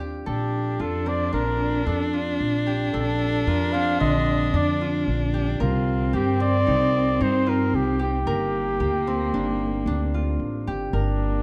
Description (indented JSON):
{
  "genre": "contemporary instrumental, chamber music in an uneven meter",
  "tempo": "112 BPM",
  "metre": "5/4",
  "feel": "straight",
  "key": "G minor",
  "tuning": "A4 = 440 Hz",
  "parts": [
    { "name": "concert harp", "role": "arpeggios", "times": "0.0-11.4 s", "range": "D3 to Bb4", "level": "-32 LUFS", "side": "equal", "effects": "none" },
    { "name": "upright bass", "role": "bass", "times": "0.0-11.4 s", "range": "G1 to G2", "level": "-28 LUFS", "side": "equal", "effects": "none" },
    { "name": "warm flugelhorn", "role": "melody", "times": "0.3-11.4 s", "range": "D4 to F5", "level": "-29 LUFS", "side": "equal", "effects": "none" },
    { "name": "warm cello", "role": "second line", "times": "0.3-11.4 s", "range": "Bb3 to D4", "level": "-29 LUFS", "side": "equal", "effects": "none" }
  ],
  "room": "light reverb",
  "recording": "close, detailed microphones",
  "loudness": "-23 LUFS",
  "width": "mono",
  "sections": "0.0-10.9 A section",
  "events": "none",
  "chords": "0.3 Bbmaj7; 5.6 Cm7; 8.3 Gm7"
}